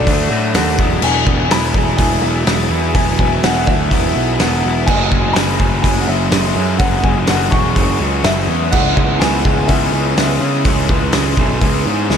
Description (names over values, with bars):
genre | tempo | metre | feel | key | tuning
indie rock | 125 BPM | 4/4 | straight | unclear | A4 = 440 Hz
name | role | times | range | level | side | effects
clear upright piano | melody | 0.0-12.1 s | D5 to C#6 | -21 LUFS | left 2 dB | analog chorus, analog delay
electric guitar through a small old amp | riff | 0.0-12.2 s | E3 to A4 | -23 LUFS | right 7 dB | lush chorus, analog delay
raw garage guitar | riff | 0.0-12.2 s | E3 to G#4 | -21 LUFS | left 6 dB | overdrive
fuzz picked electric bass | bass | 0.0-12.2 s | E1 to C#3 | -18 LUFS | equal | overdrive
loose indie drum kit | drums | 0.1-12.2 s | crash cymbal, hi-hat, kick drum, snare drum | -17 LUFS | equal | none
room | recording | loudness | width
moderate huge ambient reverb, RT60 8.4 s | dreamy mix soaked in reverb | -12 LUFS | side -8 dB against mid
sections
0.0-12.2 A section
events
none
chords
0.0 D; 0.8 Eadd9; 4.9 F#sus2; 8.7 C#m7